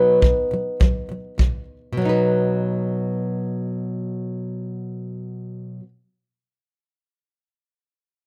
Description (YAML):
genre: acoustic pop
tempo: 102 BPM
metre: 4/4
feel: swing 60% on 16ths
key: B major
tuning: A4 = 440 Hz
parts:
  - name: flamenco guitar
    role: accompaniment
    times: 0.0-5.9 s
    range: B2 to B4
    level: -24 LUFS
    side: equal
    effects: none
  - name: kick drum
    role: drums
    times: 0.2-1.6 s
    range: none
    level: -20 LUFS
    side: equal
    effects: none
room: little or no reverb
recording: close, detailed microphones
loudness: -23 LUFS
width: mono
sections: 0.0-2.0 A section; 2.0-4.3 B section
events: none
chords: 0.0 B